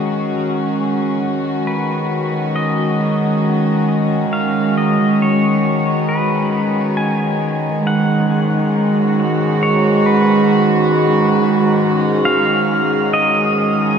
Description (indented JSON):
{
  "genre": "ambient",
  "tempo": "68 BPM",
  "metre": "3/4",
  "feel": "straight",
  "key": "G# dorian",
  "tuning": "A4 = 439 Hz",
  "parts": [
    { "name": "pedal steel guitar", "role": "melody", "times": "0.0-14.0 s", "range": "G#4 to G#5", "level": "-21 LUFS", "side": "equal", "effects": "shimmer reverb, ping-pong delay" },
    { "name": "dark chamber string section", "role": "sustained chords", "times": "0.0-14.0 s", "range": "G#2 to G#4", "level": "-14 LUFS", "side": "right 1 dB", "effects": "shimmer reverb" }
  ],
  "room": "wet cathedral reverb, RT60 4.9 s",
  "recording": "in a vast, echoing space",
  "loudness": "-14 LUFS",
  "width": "side -7 dB against mid",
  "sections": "0.0-14.0 A section",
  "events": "fade-in on pedal steel guitar 0.0-14.0",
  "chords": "0.0 G#5; 7.8 Badd9/G#",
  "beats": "0.78 1.67 | 2.55 3.43 4.31 | 5.20 6.08 6.96 | 7.84 8.72 9.61 | 10.49 11.37 12.26 | 13.14"
}